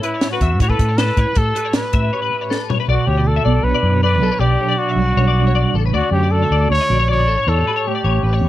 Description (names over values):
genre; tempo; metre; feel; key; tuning
math rock and midwest emo; 157 BPM; 4/4; straight; unclear; A4 = 439 Hz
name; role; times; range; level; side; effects
breathy trumpet; melody; 0.0-8.5 s; E4 to C#5; -20 LUFS; equal; none
mellow electric guitar; accompaniment; 0.0-8.5 s; A2 to C#5; -23 LUFS; right 6 dB; harmonic tremolo
twelve-string electric guitar; arpeggios; 0.0-8.5 s; A4 to E5; -23 LUFS; left 9 dB; ensemble chorus, analog delay
compact cocktail drum kit; drums; 0.0-2.8 s; hi-hat, kick drum, snare drum, toms; -19 LUFS; equal; none
fingered electric bass; bass; 0.4-8.5 s; A1 to A2; -17 LUFS; equal; none
room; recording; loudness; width
little or no reverb; dark, warm production; -14 LUFS; side -14 dB against mid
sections
0.0-2.9 A section; 2.9-8.5 B section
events
break 2.1-2.9; drum fill 2.5-2.9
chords
0.0 A9; 2.9 Bm9; 4.4 Gmaj7/B; 5.9 Dmaj7; 7.3 A7